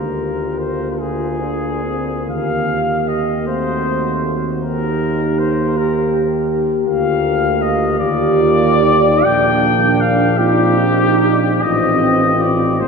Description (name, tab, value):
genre	classical, hymn-like piece for brass band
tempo	51 BPM (dotted quarters)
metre	6/8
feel	uneven beats, rubato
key	Eb major, Bb major from 6.9 s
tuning	A4 = 439 Hz
part	warm flugelhorn	melody	0.0-12.9 s	G4 to G5	-18 LUFS	left 3 dB	none
part	dark French horn section	second line	0.0-12.9 s	D4 to G4	-20 LUFS	right 4 dB	none
part	mellow trombone	accompaniment	0.0-12.9 s	A3 to C4	-24 LUFS	right 4 dB	none
part	warm euphonium	accompaniment	0.0-12.9 s	Bb3 to G4	-21 LUFS	left 3 dB	none
part	mellow tuba	bass	0.0-12.9 s	G1 to Eb2	-21 LUFS	right 1 dB	none
room	wet cathedral reverb, RT60 4.5 s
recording	minimal, uncompressed stereo recording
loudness	-14 LUFS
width	side -5 dB against mid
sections	0.0-12.9 A section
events	none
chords	0.0 Bb7/D; 2.3 Eb; 3.5 Ebdim7; 4.6 Eb; 6.9 Bb/D; 8.0 Ebmaj7; 9.2 Bb; 10.4 Cm7/Bb; 11.6 F/A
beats	0.99 | 2.28 3.47 | 4.63 5.77 | 6.88 8.01 | 9.25 10.39 | 11.63 12.81